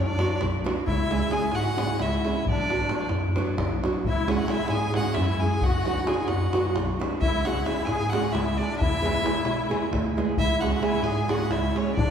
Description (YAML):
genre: balkan folk, Balkan wedding band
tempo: 265 BPM (eighths)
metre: 7/8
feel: straight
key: unclear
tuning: A4 = 439 Hz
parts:
  - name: clear violin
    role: melody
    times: 0.0-12.1 s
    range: C#5 to G#5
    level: -30 LUFS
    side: right 1 dB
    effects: none
  - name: musette accordion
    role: second line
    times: 0.0-12.1 s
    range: C#4 to G#4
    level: -31 LUFS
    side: left 4 dB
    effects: none
  - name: mellow tine electric piano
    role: bass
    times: 0.0-12.1 s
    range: B1 to B2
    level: -28 LUFS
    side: equal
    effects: medium tremolo
  - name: davul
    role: percussion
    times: 0.1-12.1 s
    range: none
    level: -29 LUFS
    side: left 1 dB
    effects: none
  - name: nylon-string guitar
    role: accompaniment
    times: 0.2-11.9 s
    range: F#3 to G#4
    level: -29 LUFS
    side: right 3 dB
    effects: none
room: wet church reverb, RT60 3.1 s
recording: recorded in a church or concert hall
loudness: -22 LUFS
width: side -8 dB against mid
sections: 0.0-10.4 A section; 10.4-12.1 A section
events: none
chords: 0.0 Bm; 0.9 C#m; 2.5 Bm; 4.1 C#m; 5.6 Bm; 7.2 C#m; 8.8 E; 10.4 C#m